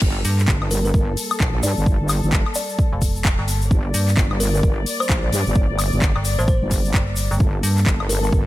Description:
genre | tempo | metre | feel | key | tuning
bass house | 130 BPM | 4/4 | swing 60% on 16ths | G minor | A4 = 440 Hz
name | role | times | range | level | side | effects
dark studio string section | sustained chords | 0.0-8.5 s | G3 to D5 | -29 LUFS | left 2 dB | sidechain pumping, low-pass filter
wobble bass | bass | 0.0-8.5 s | G1 to G2 | -21 LUFS | equal | chorus, overdrive, sidechain pumping
electronic kick drum | drums | 0.0-8.4 s | none | -19 LUFS | equal | overdrive
house drum kit | drums | 0.0-8.2 s | crash cymbal, handclaps, hi-hat, woodblock | -26 LUFS | left 2 dB | overdrive
egg shaker | percussion | 0.0-8.4 s | none | -30 LUFS | left 1 dB | none
metallic FM bass | bass | 0.2-7.8 s | F1 to G2 | -20 LUFS | equal | overdrive, sidechain pumping
buzzing kalimba | melody | 0.7-8.3 s | Bb4 to D5 | -29 LUFS | equal | digital delay
room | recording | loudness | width
digital ambience | none | -17 LUFS | side -16 dB against mid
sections
0.0-8.5 A section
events
drop 0.0-8.5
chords
0.0 Gmadd9

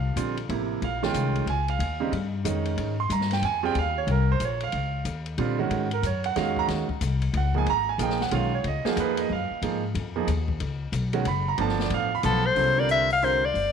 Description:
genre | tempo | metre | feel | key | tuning
modal jazz | 184 BPM | 3/4 | swing 63% on 8ths | G# dorian from 4.7 s | A4 = 442 Hz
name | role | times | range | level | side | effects
clear grand piano | accompaniment | 0.0-13.4 s | C3 to C6 | -26 LUFS | right 8 dB | none
upright bass | bass | 0.0-13.7 s | F#1 to A#2 | -27 LUFS | left 3 dB | none
open jazz drum kit | drums | 0.2-13.6 s | hi-hat, kick drum, ride cymbal, snare drum | -37 LUFS | left 9 dB | none
clear soprano saxophone | melody | 12.3-13.7 s | A4 to F5 | -21 LUFS | left 4 dB | slapback echo
room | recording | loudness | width
moderate echo chamber reverb, RT60 1.6 s, small room ambience | 1960s-style stereo with parts hard left and right | -23 LUFS | side -7 dB against mid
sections
0.0-4.7 A section; 4.7-12.6 A section; 12.6-13.7 B section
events
none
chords
0.0 C13sus4; 0.8 Eb13sus4; 4.7 G#9sus4; 8.6 C#9sus4; 11.6 G9; 12.6 C13sus4

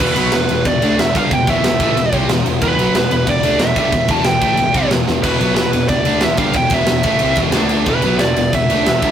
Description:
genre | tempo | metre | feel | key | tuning
heavy metal | 183 BPM | 4/4 | straight | E minor | A4 = 440 Hz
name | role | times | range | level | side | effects
high-gain lead guitar | melody | 0.0-9.1 s | B4 to A5 | -18 LUFS | right 2 dB | distortion
biting overdriven guitar | riff | 0.0-9.1 s | E2 to D4 | -26 LUFS | right 1 dB | none
heavy high-gain guitar | riff | 0.0-9.1 s | E2 to D4 | -23 LUFS | right 8 dB | distortion
sludgy distorted guitar | riff | 0.0-9.1 s | E2 to D4 | -20 LUFS | left 4 dB | overdrive
fuzz fingered electric bass | bass | 0.0-9.1 s | E1 to D2 | -22 LUFS | right 1 dB | overdrive
tight metal drum kit | drums | 0.0-9.1 s | crash cymbal, kick drum, ride cymbal, snare drum | -18 LUFS | equal | none
room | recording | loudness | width
moderate studio reverb, RT60 0.5 s | rough rehearsal-room recording, warm saturation | -13 LUFS | side -9 dB against mid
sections
0.0-9.1 A section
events
drum fill 5.1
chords
0.0 Em; 7.5 D5; 7.9 Em

